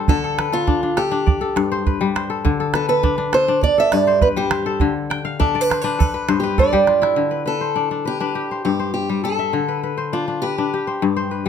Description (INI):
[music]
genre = west african traditional, West African string and xylophone music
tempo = 102 BPM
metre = 4/4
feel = straight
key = D dorian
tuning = A4 = 440 Hz
[part]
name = kora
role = arpeggios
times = 0.0-11.5 s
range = G2 to G5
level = -21 LUFS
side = left 6 dB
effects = none
[part]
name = fingerpicked acoustic archtop guitar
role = melody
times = 0.1-11.5 s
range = F4 to E5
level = -20 LUFS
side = right 2 dB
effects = none
[part]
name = calabash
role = percussion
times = 0.1-7.2 s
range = none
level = -20 LUFS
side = right 4 dB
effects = none
[sound]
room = light reverb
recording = close, detailed microphones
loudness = -17 LUFS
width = side -8 dB against mid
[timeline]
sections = 0.0-7.2 A section; 7.2-11.5 B section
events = steel-string acoustic guitar solo 0.0-7.2; kora fill 5.1-7.2; drum fill 6.7-7.2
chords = 0.1 D5; 1.3 G; 2.5 D5; 3.6 G; 4.8 D5; 6.0 N.C.; 7.2 D5; 8.4 G; 9.5 D5; 10.7 G